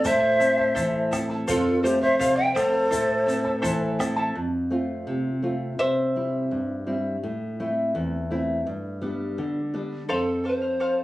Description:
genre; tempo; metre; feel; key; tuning
andean folk, Andean ensemble; 84 BPM; 2/4; straight; unclear; A4 = 443 Hz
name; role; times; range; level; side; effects
polished pan flute; melody; 0.0-4.0, 10.1-11.0 s; A4 to G5; -24 LUFS; right 1 dB; plate reverb
breathy large quena; second line; 0.0-4.0 s; F4 to E5; -24 LUFS; left 1 dB; none
charango; accompaniment; 0.0-6.8, 10.1-11.0 s; E4 to A5; -28 LUFS; left 1 dB; none
nylon-string guitar; accompaniment; 0.0-11.0 s; E2 to F4; -26 LUFS; equal; none
tube shaker; percussion; 0.0-4.2 s; none; -38 LUFS; left 2 dB; none
bombo; percussion; 0.1-4.2 s; none; -35 LUFS; right 1 dB; none
room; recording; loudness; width
moderate studio reverb, RT60 0.5 s; recorded on a phone in the room, club reverb; -22 LUFS; side -16 dB against mid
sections
0.0-4.4 A section; 4.4-10.1 B section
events
charango solo 4.4-10.1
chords
0.0 Am; 1.5 F; 2.9 Am; 4.4 F; 5.8 C; 7.2 Am; 8.7 G; 10.1 F

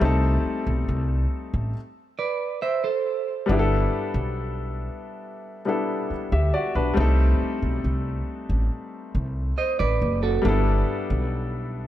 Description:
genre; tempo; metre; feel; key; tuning
contemporary R&B; 69 BPM; 4/4; straight; G major; A4 = 440 Hz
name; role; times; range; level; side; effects
clear baby grand piano; accompaniment; 0.0-11.9 s; G3 to E5; -26 LUFS; left 3 dB; none
upright bass; bass; 0.0-11.8 s; F#1 to D2; -23 LUFS; equal; none
clean electric guitar; arpeggios; 2.2-3.5, 9.6-10.6 s; F#4 to E5; -26 LUFS; right 6 dB; vibrato effect, tape echo
room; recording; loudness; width
light reverb, studio ambience; dark, warm production; -22 LUFS; side -13 dB against mid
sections
0.0-3.5 A section; 3.5-11.9 A section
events
stop 1.8-3.5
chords
0.0 Cm6; 1.8 N.C.; 3.5 G69; 7.0 Cm6; 10.4 G69

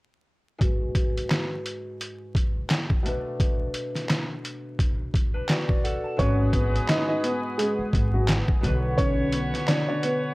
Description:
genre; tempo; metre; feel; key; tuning
hip hop, boom-bap hip-hop; 86 BPM; 4/4; swing 57% on 16ths; G# minor; A4 = 443 Hz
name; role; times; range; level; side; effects
concert harp; accompaniment; 0.6-10.3 s; G#2 to A5; -32 LUFS; left 1 dB; high-pass filter, low-pass filter
trip hop sampler-style drum kit; drums; 0.6-10.2 s; handclaps, hi-hat, kick drum, snare drum; -24 LUFS; equal; overdrive
dark upright piano; melody; 6.2-10.3 s; F#3 to D#5; -26 LUFS; equal; high-pass filter, low-pass filter
hollow soft pad; sustained chords; 6.2-10.3 s; B4 to D#6; -36 LUFS; equal; chorus, high-pass filter, low-pass filter
clear horn section; stabs; 6.2-10.3 s; G#3 to C#5; -35 LUFS; right 1 dB; high-pass filter, low-pass filter
upright bass; bass; 6.2-9.5 s; G#1 to B1; -26 LUFS; equal; none
room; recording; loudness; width
small room ambience; dry, gritty hardware recording, vinyl crackle; -22 LUFS; side -22 dB against mid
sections
0.6-6.2 A section; 6.2-10.3 B section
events
filter sweep on harp 0.6-6.2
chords
0.6 G#m7; 3.0 Bm7; 6.2 G#m7; 8.6 Bm

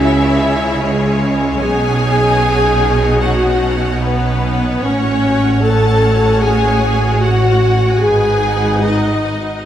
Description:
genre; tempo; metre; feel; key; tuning
cinematic, epic orchestral film score; 75 BPM (dotted quarters); 6/8; straight; unclear; A4 = 440 Hz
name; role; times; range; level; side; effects
clear symphonic violin section; melody; 0.0-9.6 s; D#5 to F#5; -34 LUFS; left 4 dB; none
clear symphonic violin section; second line; 0.0-9.6 s; G#4 to A5; -22 LUFS; left 3 dB; none
rich symphonic viola section; accompaniment; 0.0-9.6 s; G#3 to A4; -22 LUFS; right 1 dB; none
dark French horn section; sustained chords; 0.0-9.6 s; G#3 to A4; -17 LUFS; left 2 dB; none
rich symphonic string section; sustained chords; 0.0-9.6 s; C#4 to G#5; -22 LUFS; left 1 dB; none
rich symphonic cello section; bass; 0.0-9.6 s; G#2 to C#3; -18 LUFS; right 2 dB; none
rich symphonic double bass section; bass; 0.0-9.6 s; G#1 to C#2; -18 LUFS; right 2 dB; none
room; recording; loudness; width
wet scoring stage reverb, RT60 1.6 s; none; -12 LUFS; side -10 dB against mid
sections
0.0-9.7 A section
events
none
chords
0.0 C#m; 1.6 Badd9; 4.8 F#madd9/A; 8.0 G#m7

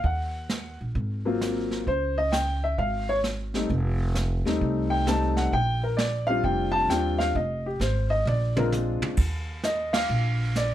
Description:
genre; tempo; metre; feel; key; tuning
jazz piano trio; 131 BPM; 4/4; swing 66% on 8ths; Bb major; A4 = 441 Hz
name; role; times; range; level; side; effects
warm upright piano; melody; 0.0-10.7 s; Gb3 to A5; -26 LUFS; left 1 dB; none
upright bass; bass; 0.0-10.7 s; F1 to Eb2; -27 LUFS; equal; none
vintage brush drum kit; drums; 0.0-10.7 s; brushed snare drum, crash cymbal, hi-hat, kick drum, ride cymbal, snare drum, toms; -30 LUFS; right 2 dB; none
room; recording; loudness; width
light reverb; none; -23 LUFS; side -12 dB against mid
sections
0.0-9.2 A section; 9.2-10.7 B section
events
drum fill 8.3-9.2; band accent 9.9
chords
0.0 Ebm; 1.0 Ab13; 1.9 Db5; 3.7 F7; 5.5 Bb69; 7.3 Fm; 8.3 Bb7; 9.2 Ebsus2

